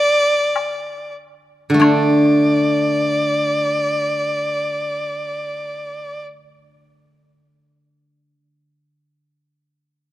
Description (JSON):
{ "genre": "chinese traditional, Chinese chamber ensemble", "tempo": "46 BPM", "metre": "2/4", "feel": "rubato", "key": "unclear", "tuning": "A4 = 440 Hz", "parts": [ { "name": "clear erhu", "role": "melody", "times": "0.0-6.2 s", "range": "D5", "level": "-19 LUFS", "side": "equal", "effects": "none" }, { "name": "woodblock", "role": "percussion", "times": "0.6-2.4 s", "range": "none", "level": "-25 LUFS", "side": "left 6 dB", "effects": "none" }, { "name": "steel-string zither", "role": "accompaniment", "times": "1.7-8.3 s", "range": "D3 to D4", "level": "-16 LUFS", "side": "equal", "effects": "none" } ], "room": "light reverb", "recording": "close, detailed microphones", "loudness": "-16 LUFS", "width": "side -14 dB against mid", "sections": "0.0-1.8 A section; 1.8-7.1 B section", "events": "slowing down 0.0-1.8", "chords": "none" }